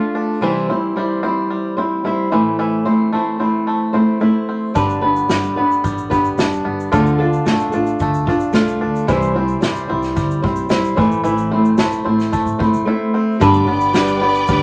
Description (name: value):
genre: acoustic pop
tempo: 111 BPM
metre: 4/4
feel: straight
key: G mixolydian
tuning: A4 = 439 Hz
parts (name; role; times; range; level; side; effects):
- flamenco guitar; accompaniment; 0.0-14.6 s; A2 to C5; -19 LUFS; equal; none
- bluegrass banjo; arpeggios; 0.0-14.6 s; D3 to F4; -25 LUFS; equal; none
- upright bass; bass; 4.8-14.6 s; F1 to A2; -26 LUFS; equal; none
- unplugged drum kit; drums; 4.8-14.6 s; kick drum, shaker, snare drum; -24 LUFS; equal; none
- clear studio string section; sustained chords; 13.4-14.6 s; B4 to D6; -26 LUFS; equal; none
room: wet studio reverb, RT60 0.6 s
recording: none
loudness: -17 LUFS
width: mono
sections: 0.0-13.4 A section; 13.4-14.6 B section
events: none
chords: 0.4 C; 2.3 Am; 4.8 G; 6.9 Dm; 9.1 C; 11.0 Am; 13.4 G